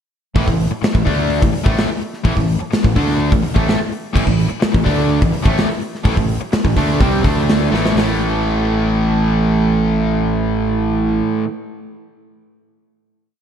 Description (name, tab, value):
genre	hard rock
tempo	126 BPM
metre	4/4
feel	straight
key	A minor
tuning	A4 = 438 Hz
part	distorted electric guitar	riff	0.3-11.5 s	A2 to D4	-22 LUFS	equal	distortion
part	distorted electric guitar	riff	0.4-11.5 s	A2 to D4	-23 LUFS	left 8 dB	overdrive
part	overdriven semi-hollow guitar	riff	0.4-11.5 s	A2 to D4	-22 LUFS	right 10 dB	analog chorus
part	fingered electric bass	bass	0.4-11.2 s	A1 to D2	-20 LUFS	equal	none
part	gated 80s drum kit	drums	0.4-8.1 s	crash cymbal, hi-hat, kick drum, snare drum	-17 LUFS	equal	none
room	light reverb, studio reverb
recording	bright 1980s-style digital production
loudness	-14 LUFS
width	side -8 dB against mid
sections	0.4-8.0 riff; 8.0-11.8 final chord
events	drum fill 7.7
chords	0.4 Am; 7.2 D5; 7.7 A5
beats	| 0.36 0.83 1.30 1.78 | 2.25 2.72 3.20 3.67 | 4.15 4.62 5.10 5.57 | 6.05 6.52 7.00 7.47 | 7.95 8.43 8.90 9.38 | 9.85 10.33 10.80 11.28